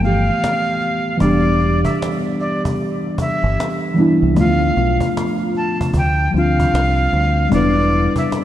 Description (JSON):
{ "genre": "lo-fi hip hop", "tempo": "76 BPM", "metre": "4/4", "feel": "swing 63% on 16ths", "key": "unclear", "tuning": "A4 = 441 Hz", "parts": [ { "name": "breathy bright jazz flute", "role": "melody", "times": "0.0-8.3 s", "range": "D5 to A5", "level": "-21 LUFS", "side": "equal", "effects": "low-pass filter, diffuse ambient delay" }, { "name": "muted felt-like synth keys", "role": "accompaniment", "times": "0.0-8.4 s", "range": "E3 to B4", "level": "-18 LUFS", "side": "left 1 dB", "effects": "chorus, cassette tape, low-pass filter" }, { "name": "deep dub fingered electric bass", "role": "bass", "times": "0.0-8.1 s", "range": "E1 to D2", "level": "-18 LUFS", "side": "equal", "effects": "none" }, { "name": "cajon", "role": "drums", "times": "0.0-8.4 s", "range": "none", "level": "-26 LUFS", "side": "equal", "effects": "vintage 12-bit sampler grit" } ], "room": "moderate lush hall reverb, RT60 2.8 s", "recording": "dreamy mix soaked in reverb", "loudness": "-14 LUFS", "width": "side -12 dB against mid", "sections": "0.0-7.5 A section", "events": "none", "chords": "0.0 G13; 1.2 Em7; 4.4 Dm6; 5.9 Dm7; 7.5 Em7" }